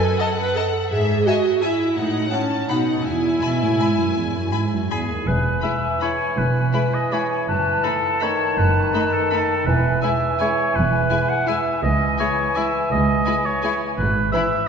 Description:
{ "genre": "classical, orchestral ballroom waltz", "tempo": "153-182 BPM", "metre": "3/4", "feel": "rubato", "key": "E major", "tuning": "A4 = 443 Hz", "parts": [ { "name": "rich studio violin section", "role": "melody", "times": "0.0-14.4 s", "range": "D#5 to B5", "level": "-31 LUFS", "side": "left 5 dB", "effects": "none" }, { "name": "rich symphonic viola section", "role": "accompaniment", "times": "0.0-14.4 s", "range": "E3 to B4", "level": "-24 LUFS", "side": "right 1 dB", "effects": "none" }, { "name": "warm chamber cello section", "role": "bass", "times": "0.0-14.3 s", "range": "C#2 to B2", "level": "-25 LUFS", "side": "right 2 dB", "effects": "none" }, { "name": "rich chamber violin section", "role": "second line", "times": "0.2-14.4 s", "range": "D#4 to B5", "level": "-30 LUFS", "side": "left 4 dB", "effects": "none" }, { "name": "warm oboe", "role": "second line", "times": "4.9-14.7 s", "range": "G#4 to F#5", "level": "-23 LUFS", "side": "equal", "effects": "none" }, { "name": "bright small flute group", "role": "second line", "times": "5.3-14.4 s", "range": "G#5 to B5", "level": "-27 LUFS", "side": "left 4 dB", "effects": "none" }, { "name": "mellow bassoon", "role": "accompaniment", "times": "5.3-14.5 s", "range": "D#3 to E3", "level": "-25 LUFS", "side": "equal", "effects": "none" }, { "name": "warm chamber double bass section", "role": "bass", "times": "5.3-14.3 s", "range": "E1 to C#2", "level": "-24 LUFS", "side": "right 2 dB", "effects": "none" } ], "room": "wet concert hall reverb, RT60 2.1 s", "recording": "heard from further back in the room, nothing above 7.9 kHz", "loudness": "-18 LUFS", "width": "side -6 dB against mid", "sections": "0.0-5.3 A section; 5.3-14.7 B section", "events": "none", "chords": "0.0 D#dim/F# (rootless); 0.9 E/G#; 2.0 F#m/A; 2.7 B; 3.0 E; 7.5 B7/F#; 9.7 E; 11.8 C#m; 14.0 E/G#", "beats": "0.19 0.56 | 0.91 1.25 1.62 | 1.96 2.31 2.68 | 3.04 3.40 3.79 | 4.15 4.52 4.90 | 5.27 5.64 6.02 | 6.38 6.74 7.12 | 7.48 7.84 8.22 | 8.58 8.94 9.31 | 9.66 10.02 10.40 | 10.75 11.11 11.48 | 11.83 12.20 12.57 | 12.92 13.27 13.64 | 13.98 14.33" }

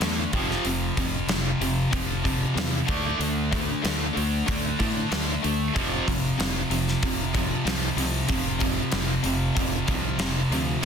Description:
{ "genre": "hard rock", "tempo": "94 BPM", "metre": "4/4", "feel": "straight", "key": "unclear", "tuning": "A4 = 440 Hz", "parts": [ { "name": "high-gain distorted guitar", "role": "riff", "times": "0.0-10.8 s", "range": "F2 to D4", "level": "-30 LUFS", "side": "equal", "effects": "distortion" }, { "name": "tight distorted guitar", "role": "riff", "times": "0.0-10.8 s", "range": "F2 to D4", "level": "-30 LUFS", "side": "left 10 dB", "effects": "distortion" }, { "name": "tight distorted guitar", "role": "riff", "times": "0.0-10.8 s", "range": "F2 to D4", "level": "-30 LUFS", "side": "right 10 dB", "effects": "distortion" }, { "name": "modern bright fingered electric bass", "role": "bass", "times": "0.0-10.8 s", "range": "F1 to A2", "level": "-30 LUFS", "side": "equal", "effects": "none" }, { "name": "gated 80s drum kit", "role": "drums", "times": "0.0-10.7 s", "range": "hi-hat, kick drum, snare drum", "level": "-28 LUFS", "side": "equal", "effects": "none" } ], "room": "little or no reverb", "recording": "dense, heavily limited modern master", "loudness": "-23 LUFS", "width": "side -7 dB against mid", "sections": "0.0-10.8 A section", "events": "none", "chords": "0.3 F5; 2.9 D5; 5.8 F5", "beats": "0.01 | 0.65 1.29 1.93 2.57 | 3.21 3.85 4.49 5.12 | 5.76 6.39 7.03 7.67 | 8.30 8.94 9.57 10.21 | 10.84" }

